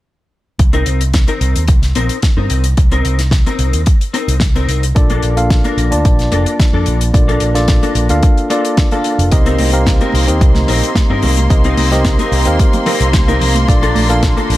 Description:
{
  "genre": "nu-disco, nu disco",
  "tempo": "110 BPM",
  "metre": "4/4",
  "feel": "straight",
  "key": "C dorian",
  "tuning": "A4 = 440 Hz",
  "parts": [
    { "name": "picked electric bass with an envelope filter", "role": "bass", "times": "0.6-14.6 s", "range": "F1 to G2", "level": "-15 LUFS", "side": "equal", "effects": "none" },
    { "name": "damped 70s drum kit", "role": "drums", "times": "0.6-14.6 s", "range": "hi-hat, snare drum", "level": "-21 LUFS", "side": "left 2 dB", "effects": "small room ambience" },
    { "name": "electronic kick drum", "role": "drums", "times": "0.6-14.3 s", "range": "none", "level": "-12 LUFS", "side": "equal", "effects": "overdrive, small room ambience" },
    { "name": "mellow electric guitar", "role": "riff", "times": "0.7-14.6 s", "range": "Bb3 to Bb4", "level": "-21 LUFS", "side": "left 3 dB", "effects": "ensemble chorus, tape echo" },
    { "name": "tine electric piano", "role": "accompaniment", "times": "4.9-14.6 s", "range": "Bb3 to A5", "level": "-17 LUFS", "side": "equal", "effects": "sidechain pumping, tape echo" },
    { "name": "rich symphonic string section", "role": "sustained chords", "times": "9.3-14.6 s", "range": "Bb3 to C6", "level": "-21 LUFS", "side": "equal", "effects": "sidechain pumping" },
    { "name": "congas", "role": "percussion", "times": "9.5-14.5 s", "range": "none", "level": "-23 LUFS", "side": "right 3 dB", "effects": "none" }
  ],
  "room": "small room ambience",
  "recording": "none",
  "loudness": "-10 LUFS",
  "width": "side -16 dB against mid",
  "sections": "0.6-14.6 A section",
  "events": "none",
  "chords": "0.6 Cm7; 5.0 Bbmaj7; 9.3 Cm7; 13.7 Bbmaj7",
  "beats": "| 0.60 1.14 1.69 2.23 | 2.78 3.32 3.87 4.42 | 4.96 5.50 6.05 6.60 | 7.14 7.69 8.23 8.78 | 9.32 9.87 10.41 10.96 | 11.51 12.05 12.60 13.14 | 13.69 14.23"
}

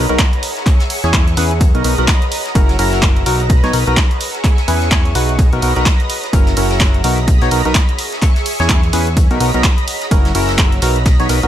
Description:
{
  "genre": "piano house",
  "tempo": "127 BPM",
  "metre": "4/4",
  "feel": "swing 59% on 16ths",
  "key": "B major",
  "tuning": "A4 = 439 Hz",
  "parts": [
    { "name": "analog string pad", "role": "sustained chords", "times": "0.0-11.5 s", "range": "F#4 to C#6", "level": "-23 LUFS", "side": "equal", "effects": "ensemble chorus, sidechain pumping" },
    { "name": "percussive organ stab", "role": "riff", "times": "0.0-11.5 s", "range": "B3 to C#5", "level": "-19 LUFS", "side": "equal", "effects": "analog chorus, sidechain pumping, ping-pong delay" },
    { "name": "fat analog bass", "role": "bass", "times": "0.0-11.5 s", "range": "F#1 to E2", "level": "-17 LUFS", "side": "equal", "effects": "tube saturation, sidechain pumping" },
    { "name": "ethereal airy pad", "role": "texture", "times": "0.0-11.5 s", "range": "G#4 to A#5", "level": "-28 LUFS", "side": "right 1 dB", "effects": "ensemble chorus, built-in reverb, sidechain pumping" },
    { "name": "punchy analog drum machine", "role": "drums", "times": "0.1-11.5 s", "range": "handclaps, hi-hat, ride cymbal", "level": "-21 LUFS", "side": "right 1 dB", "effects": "overdrive, studio ambience" },
    { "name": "electronic kick drum", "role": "drums", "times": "0.2-11.2 s", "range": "none", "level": "-13 LUFS", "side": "equal", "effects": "overdrive, studio ambience" },
    { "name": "vintage brush drum kit", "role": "drums", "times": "0.2-11.4 s", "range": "hi-hat, snare drum", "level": "-29 LUFS", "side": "left 2 dB", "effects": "none" }
  ],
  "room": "little or no reverb",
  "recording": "none",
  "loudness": "-11 LUFS",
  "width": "side -11 dB against mid",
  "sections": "0.0-11.5 A section",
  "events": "none",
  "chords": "0.4 E6; 1.6 Bmaj7; 2.6 F#7; 3.3 Bmaj7; 4.2 E6; 5.4 Bmaj7; 6.3 F#7; 7.0 Bmaj7; 8.0 E6; 9.2 Bmaj7; 10.1 F#7; 10.8 Bmaj7",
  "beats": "0.19 0.66 1.14 | 1.61 2.08 2.55 3.03 | 3.50 3.97 4.44 4.92 | 5.39 5.86 6.33 6.80 | 7.28 7.75 8.22 8.70 | 9.17 9.64 10.11 10.59 | 11.06"
}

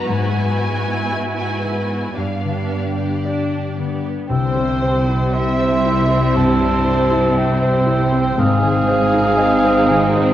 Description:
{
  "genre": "cinematic",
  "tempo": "58 BPM",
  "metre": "4/4",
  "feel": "rubato",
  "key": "C major from 4.3 s",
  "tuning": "A4 = 436 Hz",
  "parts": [
    { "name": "rich symphonic violin section", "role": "melody", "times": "0.0-10.3 s", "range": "Eb4 to G#5", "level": "-30 LUFS", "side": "left 1 dB", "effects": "none" },
    { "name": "warm symphonic violin section", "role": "second line", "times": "0.0-10.3 s", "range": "F#4 to E5", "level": "-24 LUFS", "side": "left 1 dB", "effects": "none" },
    { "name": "clear grand piano", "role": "accompaniment", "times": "0.0-10.3 s", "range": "C2 to E5", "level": "-22 LUFS", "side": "left 1 dB", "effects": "none" },
    { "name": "rich symphonic viola section", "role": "accompaniment", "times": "0.0-10.3 s", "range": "G3 to E4", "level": "-25 LUFS", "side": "right 2 dB", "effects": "none" },
    { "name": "concert harp", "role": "arpeggios", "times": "0.0-10.3 s", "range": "F#2 to C5", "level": "-24 LUFS", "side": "left 6 dB", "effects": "none" },
    { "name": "clear symphonic cello section", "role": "bass", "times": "0.0-10.3 s", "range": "G2 to C3", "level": "-24 LUFS", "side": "right 3 dB", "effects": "none" },
    { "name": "mellow cor anglais", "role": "second line", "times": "4.3-10.2 s", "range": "C5 to A5", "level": "-22 LUFS", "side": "right 2 dB", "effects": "none" },
    { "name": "silver concert flute", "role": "second line", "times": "4.3-10.3 s", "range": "Eb6 to E6", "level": "-25 LUFS", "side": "right 1 dB", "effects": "none" },
    { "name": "warm clarinet", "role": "second line", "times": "4.3-10.3 s", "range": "C4", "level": "-28 LUFS", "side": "left 2 dB", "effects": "none" },
    { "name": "mellow French horn section", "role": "sustained chords", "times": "4.3-10.3 s", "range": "C4 to E4", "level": "-24 LUFS", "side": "equal", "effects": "none" },
    { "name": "rich symphonic double bass section", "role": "bass", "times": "4.3-10.3 s", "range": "Ab1 to C2", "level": "-24 LUFS", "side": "right 2 dB", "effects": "none" }
  ],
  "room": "wet scoring stage reverb, RT60 2.0 s",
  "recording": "worn, warbling old tape, cassette tape, warbly pitch drift",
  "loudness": "-15 LUFS",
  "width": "side -12 dB against mid",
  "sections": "0.0-4.3 A section; 4.3-10.3 A section",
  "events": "none",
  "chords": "0.1 Eadd9/G#; 2.2 G7; 4.3 C; 8.4 Ab",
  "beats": "| 0.09 1.12 2.18 3.25 | 4.30 5.35 6.37 7.38 | 8.38 9.39"
}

